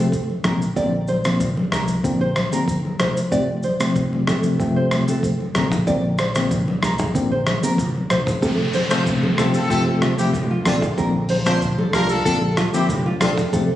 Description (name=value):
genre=afrobeats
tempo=94 BPM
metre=4/4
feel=straight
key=unclear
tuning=A4 = 440 Hz
part: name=bell-like tine electric piano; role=accompaniment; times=0.0-13.7 s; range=C3 to C4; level=-22 LUFS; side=left 1 dB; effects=medium stereo tremolo
part: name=nylon-string guitar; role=riff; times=0.0-13.6 s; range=F4 to D5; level=-26 LUFS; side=right 2 dB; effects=ping-pong delay
part: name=warm sub bass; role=bass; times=0.0-13.8 s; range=F1 to C2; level=-28 LUFS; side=equal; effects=none
part: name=dusty soul sampler-style drum kit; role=drums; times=0.1-13.7 s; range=hi-hat, kick drum, rim click, shaker, toms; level=-26 LUFS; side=equal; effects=none
part: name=congas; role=percussion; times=0.3-13.4 s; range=none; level=-25 LUFS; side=equal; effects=none
part: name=downlifter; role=sound effects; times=8.4-13.5 s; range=none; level=-30 LUFS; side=equal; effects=none
part: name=clear horn section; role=second line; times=8.9-13.3 s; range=C4 to C5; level=-24 LUFS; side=left 2 dB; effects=ping-pong delay
room=moderate plate reverb, RT60 2.3 s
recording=recorded on a phone in the room, studio reverb, nothing above 10.5 kHz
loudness=-17 LUFS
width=side -13 dB against mid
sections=0.0-8.4 A section; 8.4-13.8 B section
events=none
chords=0.4 Bbadd9; 3.3 F; 5.6 Bbadd9; 8.4 F; 10.7 Bbadd9